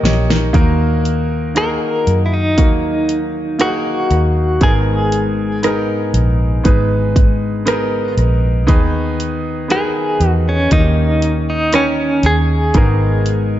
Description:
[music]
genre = pop ballad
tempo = 59 BPM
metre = 4/4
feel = straight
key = G# minor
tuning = A4 = 443 Hz
[part]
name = clear concert grand piano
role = accompaniment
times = 0.0-13.6 s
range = G#2 to A#5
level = -20 LUFS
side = right 1 dB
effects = none
[part]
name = picked steel-string acoustic guitar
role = arpeggios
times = 0.0-13.6 s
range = G#2 to A#4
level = -23 LUFS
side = left 6 dB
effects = none
[part]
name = vintage muted fingered electric bass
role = bass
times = 0.0-13.6 s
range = G#1 to F#2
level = -17 LUFS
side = equal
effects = none
[part]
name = pop drum kit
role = drums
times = 0.1-13.5 s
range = hi-hat, kick drum, rim click, snare drum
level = -16 LUFS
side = equal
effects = none
[part]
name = direct-recorded clean electric guitar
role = melody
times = 1.6-13.6 s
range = C#4 to A#4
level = -18 LUFS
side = equal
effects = tremolo
[sound]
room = light reverb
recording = dark, warm production, nothing above 7.6 kHz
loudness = -13 LUFS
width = side -13 dB against mid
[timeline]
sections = 0.0-13.6 A section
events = drum fill 0.0-0.5; grand piano fill 0.0-0.5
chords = 0.0 D#; 0.5 D#m; 4.6 G#madd9; 8.7 G#m/D#; 10.7 D#7; 12.7 G#madd9

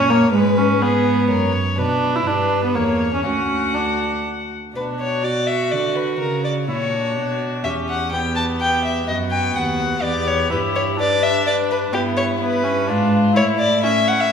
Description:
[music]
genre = quick classical-period movement for string quartet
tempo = 125 BPM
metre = 3/4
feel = rubato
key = B minor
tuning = A4 = 442 Hz
[part]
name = dark violin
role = melody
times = 0.0-14.3 s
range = E4 to F#5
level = -25 LUFS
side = left 7 dB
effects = none
[part]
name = rich violin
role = second line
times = 0.0-14.3 s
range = F#4 to A5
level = -22 LUFS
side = left 3 dB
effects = none
[part]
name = warm viola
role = accompaniment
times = 0.0-14.3 s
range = G#3 to F#4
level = -22 LUFS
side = right 2 dB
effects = none
[part]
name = rich cello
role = bass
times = 0.0-14.3 s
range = D2 to D3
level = -23 LUFS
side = right 2 dB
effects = none
[sound]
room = wet recital hall reverb, RT60 1.5 s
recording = heard from further back in the room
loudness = -17 LUFS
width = side -7 dB against mid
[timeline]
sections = 0.0-4.8 A section; 4.8-14.3 A section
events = none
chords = 0.3 G#madd11; 1.3 F#; 1.8 Bm; 2.3 G; 2.8 A#dim/E; 3.3 Dmaj7; 4.8 Bm; 6.2 F#/C#; 7.2 Bm; 7.6 Em; 9.1 B/F#; 10.0 Em7; 10.5 G; 11.9 Em/G; 12.9 G#dim7; 13.4 A

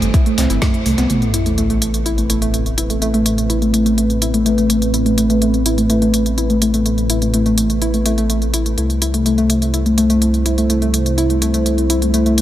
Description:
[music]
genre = melodic techno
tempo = 125 BPM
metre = 4/4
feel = straight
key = A minor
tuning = A4 = 440 Hz
[part]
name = dark analog pad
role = sustained chords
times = 0.0-12.4 s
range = G3 to C5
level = -23 LUFS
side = equal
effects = chorus, phaser, sidechain pumping
[part]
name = dark detuned saw bass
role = bass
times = 0.0-12.4 s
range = G1 to C2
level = -19 LUFS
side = equal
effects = sidechain pumping
[part]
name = overtone-sweeping drone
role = drone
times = 0.0-1.1 s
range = A2 to E3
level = -32 LUFS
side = right 1 dB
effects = chorus, built-in reverb, sidechain pumping
[part]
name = deep house drum kit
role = drums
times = 0.0-12.4 s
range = hi-hat, snare drum, toms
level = -22 LUFS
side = equal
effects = none
[part]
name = woody wave-folded pluck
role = arpeggios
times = 0.1-12.4 s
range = A3 to E4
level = -17 LUFS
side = equal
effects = wide subtle chorus, cassette tape, sidechain pumping, analog delay
[part]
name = dusty soul sampler-style drum kit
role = drums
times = 0.1-1.1 s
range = hi-hat, snare drum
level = -32 LUFS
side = equal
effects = none
[part]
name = electronic kick drum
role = drums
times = 0.1-0.7 s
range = none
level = -14 LUFS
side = equal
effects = none
[part]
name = sub drop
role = sound effects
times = 1.1-3.0 s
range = none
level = -24 LUFS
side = left 1 dB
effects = none
[sound]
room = light reverb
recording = none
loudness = -14 LUFS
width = side -12 dB against mid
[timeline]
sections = 0.0-1.1 A section; 1.1-12.4 B section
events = impact 1.1-3.0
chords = 0.0 C; 1.1 Amadd9; 8.8 C

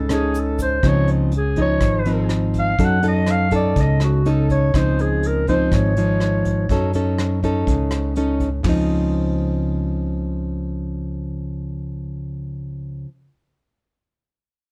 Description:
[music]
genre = bossa nova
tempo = 123 BPM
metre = 4/4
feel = straight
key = Db major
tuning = A4 = 439 Hz
[part]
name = growling clarinet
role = melody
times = 0.0-7.2 s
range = F4 to Gb5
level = -26 LUFS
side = equal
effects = none
[part]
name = nylon-string guitar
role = accompaniment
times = 0.0-13.1 s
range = Ab2 to A4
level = -24 LUFS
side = equal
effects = none
[part]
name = fingered electric bass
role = bass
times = 0.0-13.0 s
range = Ab1 to Gb2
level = -25 LUFS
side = equal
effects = none
[part]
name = vintage brush drum kit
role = drums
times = 0.1-8.8 s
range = hi-hat, kick drum, rim click, toms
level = -28 LUFS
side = equal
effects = none
[part]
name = egg shaker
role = percussion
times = 0.1-0.8 s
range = none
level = -45 LUFS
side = equal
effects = none
[sound]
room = light reverb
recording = dark, warm production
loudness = -20 LUFS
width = mono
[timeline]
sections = 0.0-8.7 A section; 8.7-12.6 B section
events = clarinet solo 0.0-8.7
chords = 0.0 Gbm6 (rootless); 0.8 Dbmaj9; 2.8 Gbm6; 4.7 Dbmaj9; 6.7 Gbm6; 8.7 Dbmaj9

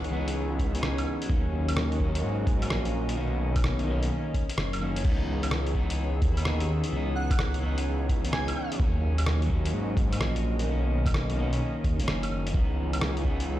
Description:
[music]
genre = future garage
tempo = 128 BPM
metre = 4/4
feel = swing 65% on 16ths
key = C# dorian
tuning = A4 = 437 Hz
[part]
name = electric guitar at the edge of break-up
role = accompaniment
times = 0.0-13.6 s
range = D#3 to E4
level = -33 LUFS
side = equal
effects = sidechain pumping, ping-pong delay
[part]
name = warbly tape-like pad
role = sustained chords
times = 0.0-13.6 s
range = C#4 to E6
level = -37 LUFS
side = left 1 dB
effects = chorus, built-in reverb, sidechain pumping
[part]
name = swelling detuned saw bass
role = bass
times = 0.0-13.6 s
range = F#1 to G#2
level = -28 LUFS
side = equal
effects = sidechain pumping
[part]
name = lo-fi sampler-style drum kit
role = drums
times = 0.0-13.5 s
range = claves, crash cymbal, hi-hat, rim click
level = -33 LUFS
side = equal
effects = small room ambience
[part]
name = electronic kick drum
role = drums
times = 0.6-13.4 s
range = none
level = -26 LUFS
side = equal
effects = small room ambience
[part]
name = airy dreamy lead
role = melody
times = 7.2-8.7 s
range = F#5 to G#5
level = -38 LUFS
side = right 3 dB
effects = chorus, digital delay
[sound]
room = digital ambience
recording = played on a big sound system in a bare room, large studio reverb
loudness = -25 LUFS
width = side -14 dB against mid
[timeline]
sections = 0.0-13.6 A section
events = none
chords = 0.0 C#m7; 1.3 D#m7; 3.2 Bmaj9; 5.0 C#m7; 8.8 D#m7; 10.7 Bmaj9; 12.5 C#m7

